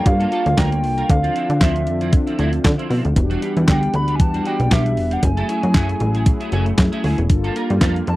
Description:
early-eighties boogie funk; 116 BPM; 4/4; swing 56% on 16ths; A4 = 444 Hz
hollow clarinet-like synth lead; melody; 0.0-8.2 s; E5 to B5; -24 LUFS; equal; chorus
mellow synth brass; accompaniment; 0.0-8.2 s; A3 to A4; -26 LUFS; left 2 dB; chorus
brassy analog pad; sustained chords; 0.0-8.2 s; D3 to F#5; -29 LUFS; equal; chorus
clean electric guitar; riff; 0.0-8.1 s; F3 to Bb4; -27 LUFS; right 3 dB; ensemble chorus
plucky analog bass; bass; 0.1-8.2 s; E1 to D3; -19 LUFS; equal
crisp 8-bit digital drum machine; drums; 0.1-8.2 s; handclaps, hi-hat, kick drum, snare drum; -16 LUFS; equal
little or no reverb; dry, close 1970s-style studio recording; -16 LUFS; side -18 dB against mid
0.0-8.2 A section
0.0 Gm9; 1.1 Dm9; 3.2 Em9; 5.2 F#m9; 7.3 Gm9
0.06 0.58 | 1.09 1.61 2.13 2.65 | 3.16 3.68 4.20 4.71 | 5.23 5.75 6.27 6.78 | 7.30 7.82

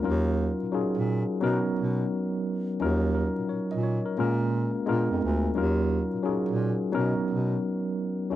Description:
R&B, neo-soul; 87 BPM; 4/4; swing 62% on 16ths; Eb minor; A4 = 444 Hz
tine electric piano; accompaniment; 0.0-8.4 s; F3 to Eb5; -26 LUFS; equal; auto-pan
mellow bass clarinet; bass; 0.1-7.6 s; D2 to B2; -28 LUFS; equal
little or no reverb; dry, close 1970s-style studio recording; -24 LUFS; side -13 dB against mid
0.0-8.4 A section
0.0 Ebm9; 1.4 Bmaj7; 2.8 Ebm9; 4.2 Bbm7; 4.9 Bb7b9; 5.6 Ebm9; 6.9 Bmaj7
| 0.04 0.73 1.42 2.11 | 2.80 3.49 4.18 4.87 | 5.56 6.25 6.94 7.63 | 8.32

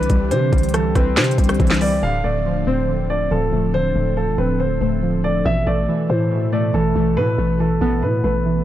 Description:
hip hop, trap; 140 BPM; 4/4; half-time; A4 = 440 Hz
warm concert grand piano; melody; 0.0-8.6 s; A4 to F5; -22 LUFS; equal; digital delay
warbly lo-fi synth keys; accompaniment; 0.0-8.6 s; B2 to C4; -22 LUFS; equal; chorus
hollow soft pad; sustained chords; 0.0-8.6 s; B2 to A4; -28 LUFS; equal; ensemble chorus
growling 808-style bass; bass; 0.0-8.6 s; D1 to C3; -21 LUFS; equal
trap drum kit; drums; 0.0-1.9 s; handclaps, hi-hat, kick drum, rim click, snare drum; -18 LUFS; equal
digital ambience; -16 LUFS; side -12 dB against mid
0.0-2.0 A section; 2.0-8.6 B section
0.0 Cadd9; 2.0 Dm7; 5.5 Asus2
| 0.31 0.74 1.17 1.60 | 2.03 2.46 2.88 3.31 | 3.74 4.17 4.60 5.03 | 5.46 5.88 6.31 6.74 | 7.17 7.60 8.03 8.46

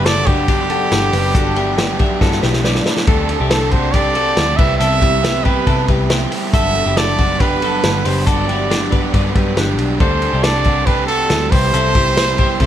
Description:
jangly indie pop; 139 BPM; 4/4; straight; G major; A4 = 440 Hz
clear trumpet; melody; 0.0-12.7 s; G4 to E5; -19 LUFS; right 2 dB; digital delay
crunchy overdriven guitar; accompaniment; 0.0-12.7 s; G2 to A4; -22 LUFS; right 7 dB
string machine, full ensemble; sustained chords; 0.0-12.7 s; G3 to C6; -27 LUFS; left 1 dB; ensemble chorus
twelve-string electric guitar; arpeggios; 0.0-12.7 s; D4 to F#5; -22 LUFS; left 6 dB
vintage muted picked electric bass; bass; 0.0-12.7 s; F#1 to C3; -20 LUFS; left 1 dB
vintage drum kit; drums; 0.1-12.7 s; crash cymbal, hi-hat, kick drum, ride cymbal, snare drum; -17 LUFS; left 1 dB
light reverb; -13 LUFS; side -10 dB against mid
0.0-12.7 A section
drum fill 2.2-3.1
0.0 Gmaj7; 3.1 D7sus4; 4.6 Cmaj7; 6.5 Gmaj7; 10.0 D7sus4; 11.5 Cmaj7
0.05 0.48 0.92 | 1.35 1.78 2.21 2.64 | 3.08 3.51 3.94 4.37 | 4.81 5.24 5.67 6.11 | 6.54 6.97 7.40 7.84 | 8.27 8.71 9.14 9.57 | 10.01 10.44 10.87 11.30 | 11.74 12.17 12.60

